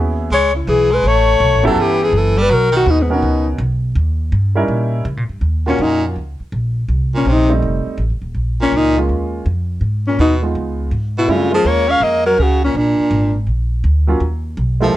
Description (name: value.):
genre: jazz, small-group swing and bop.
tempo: 164 BPM.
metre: 4/4.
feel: swing 65% on 8ths.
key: Eb minor from 5.4 s.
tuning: A4 = 443 Hz.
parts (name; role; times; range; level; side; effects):
warm baby grand piano; accompaniment; 0.0-15.0 s; Gb3 to A#4; -20 LUFS; right 2 dB; none.
upright bass; bass; 0.0-15.0 s; Eb1 to C#3; -17 LUFS; equal; none.
dark alto saxophone; melody; 0.3-3.5, 5.7-15.0 s; B3 to F5; -15 LUFS; left 2 dB; none.
bright baritone saxophone; second line; 0.3-15.0 s; G#2 to Db4; -20 LUFS; right 2 dB; none.
room: light reverb.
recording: none.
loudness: -13 LUFS.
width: side -14 dB against mid.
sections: 0.0-5.4 A section; 5.4-15.0 B section.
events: none.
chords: 0.0 E6; 1.0 A9; 2.5 Bmaj9; 4.0 D#7b9; 5.4 Ebm9; 6.9 Cm7; 7.6 F7; 8.4 Bbm7; 9.8 Abm; 10.6 Db9; 11.3 Gbmaj9; 12.7 Bb7; 14.2 Eb5.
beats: 0.31 0.68 | 1.04 1.41 1.77 2.14 | 2.50 2.87 3.24 3.60 | 3.97 4.33 4.70 5.06 | 5.43 5.79 6.16 6.53 | 6.89 7.26 7.62 7.99 | 8.36 8.72 9.09 9.45 | 9.82 10.19 10.55 10.92 | 11.28 11.65 12.01 12.38 | 12.74 13.11 13.48 13.84 | 14.21 14.57 14.94.